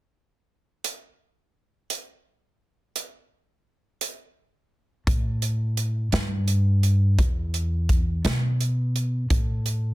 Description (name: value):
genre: slow blues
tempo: 57 BPM (dotted quarters)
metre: 12/8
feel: straight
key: unclear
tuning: A4 = 443 Hz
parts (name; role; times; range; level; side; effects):
- natural country drum kit; drums; 0.8-9.8 s; hi-hat, kick drum, snare drum; -25 LUFS; equal; none
- upright bass; bass; 5.1-9.9 s; E2 to B2; -22 LUFS; equal; none
room: little or no reverb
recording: dense, heavily limited modern master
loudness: -22 LUFS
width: side -18 dB against mid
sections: 0.8-5.1 A section; 5.1-9.9 B section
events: none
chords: none